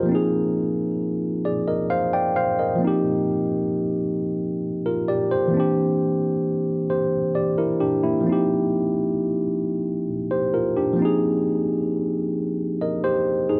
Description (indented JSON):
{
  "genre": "R&B",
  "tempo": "44 BPM (dotted quarters)",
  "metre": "6/8",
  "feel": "straight",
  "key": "unclear",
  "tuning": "A4 = 439 Hz",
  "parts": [
    { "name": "bright tine electric piano", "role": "solo", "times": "0.0-13.6 s", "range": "E3 to G5", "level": "-23 LUFS", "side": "equal", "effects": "none" }
  ],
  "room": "moderate plate reverb, RT60 2.7 s",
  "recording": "none",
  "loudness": "-23 LUFS",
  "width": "mono",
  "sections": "0.0-13.6 A section",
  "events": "none",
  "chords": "0.1 Ab69; 2.8 Eb69; 5.5 C9; 8.3 F9sus4; 11.0 Ab69"
}